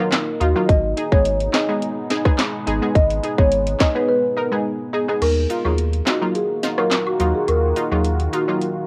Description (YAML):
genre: dancehall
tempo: 106 BPM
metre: 4/4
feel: straight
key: Eb minor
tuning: A4 = 440 Hz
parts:
  - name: analog pluck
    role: accompaniment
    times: 0.0-8.6 s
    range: Gb3 to Bb4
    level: -27 LUFS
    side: equal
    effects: chorus, sidechain pumping
  - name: deep dark ambient pad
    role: sustained chords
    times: 0.0-8.9 s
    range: Eb3 to Gb4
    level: -31 LUFS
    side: equal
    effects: chorus, built-in reverb, sidechain pumping
  - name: island pop drum kit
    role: drums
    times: 0.1-8.8 s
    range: crash cymbal, handclaps, hi-hat, kick drum, rim click, snare drum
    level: -22 LUFS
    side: equal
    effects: cassette tape
  - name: marimba with medium mallets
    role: melody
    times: 0.4-8.4 s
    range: Gb4 to Eb5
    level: -24 LUFS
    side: equal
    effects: cassette tape, tape echo
  - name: warm sub bass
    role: bass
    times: 0.4-8.3 s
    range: Ab1 to Eb2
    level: -24 LUFS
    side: equal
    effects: none
  - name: woodblock and cabasa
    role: percussion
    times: 5.2-8.5 s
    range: none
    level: -34 LUFS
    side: equal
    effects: none
room: digital ambience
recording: home recording on cassette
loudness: -19 LUFS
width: mono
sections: 0.0-5.2 A section; 5.2-8.9 B section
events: break 4.1-5.2; kick muted 5.2-8.9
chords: 0.0 Ebmadd9; 0.7 Abm; 5.2 Ebmadd9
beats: 0.12 | 0.69 1.26 1.82 2.39 | 2.96 3.52 4.09 4.65 | 5.22 5.79 6.35 6.92 | 7.48 8.05 8.62